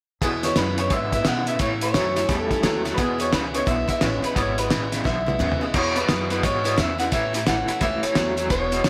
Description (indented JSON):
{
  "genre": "rockabilly",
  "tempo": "174 BPM",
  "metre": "4/4",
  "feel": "swing 63% on 8ths",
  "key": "E major",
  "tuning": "A4 = 440 Hz",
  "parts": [
    { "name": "electric guitar through a small old amp", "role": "melody", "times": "0.2-8.9 s", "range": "G#4 to F#5", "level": "-28 LUFS", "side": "equal", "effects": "tape echo" },
    { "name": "picked acoustic archtop guitar", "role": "accompaniment", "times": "0.2-8.9 s", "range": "E2 to E4", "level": "-31 LUFS", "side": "equal", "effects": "none" },
    { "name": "electric guitar through a small old amp", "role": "riff", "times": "0.2-8.9 s", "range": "E2 to G3", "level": "-30 LUFS", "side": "equal", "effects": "tremolo" },
    { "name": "upright bass", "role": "bass", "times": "0.2-8.9 s", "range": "E1 to B2", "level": "-32 LUFS", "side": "equal", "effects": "none" },
    { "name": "cloth-damped thuddy drum kit", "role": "drums", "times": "0.2-8.9 s", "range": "crash cymbal, hi-hat, kick drum, snare drum, toms", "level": "-27 LUFS", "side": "equal", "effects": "none" }
  ],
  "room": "moderate studio reverb, RT60 0.7 s",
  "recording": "none",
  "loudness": "-22 LUFS",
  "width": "mono",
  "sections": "0.2-5.7 A section; 5.7-8.9 B section",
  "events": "drum fill 5.1-5.7",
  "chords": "0.2 E; 1.6 A; 3.0 E; 7.1 A"
}